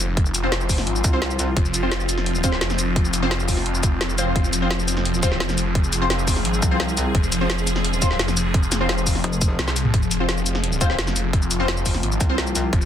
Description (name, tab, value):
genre	dark technical drum and bass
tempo	172 BPM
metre	4/4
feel	straight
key	F minor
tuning	A4 = 440 Hz
part	swarming drone	sustained chords	0.0-12.9 s	F3 to Ab4	-26 LUFS	left 2 dB	built-in reverb, sidechain pumping
part	snarling distorted saw bass	bass	0.0-12.9 s	F1 to C2	-24 LUFS	equal	distortion, tube saturation, sidechain pumping
part	drum and bass drum kit	drums	0.0-12.9 s	cabasa, hi-hat, snare drum, toms	-24 LUFS	equal	soft clipping on snare
part	electronic kick drum	drums	0.2-12.8 s	none	-20 LUFS	equal	none
part	orchestra-hit-like synth stab	stabs	0.4-12.4 s	C4 to C5	-27 LUFS	left 1 dB	built-in reverb, phaser, tape echo
part	metallic wobble bass	bass	1.0-1.6, 6.6-7.1, 9.2-9.6, 12.2-12.7 s	F1 to C2	-24 LUFS	equal	distortion, chorus
room	light reverb, digital ambience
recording	dense, heavily limited modern master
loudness	-18 LUFS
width	side -10 dB against mid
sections	0.0-12.9 A section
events	drum fill 9.6-9.9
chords	0.0 F5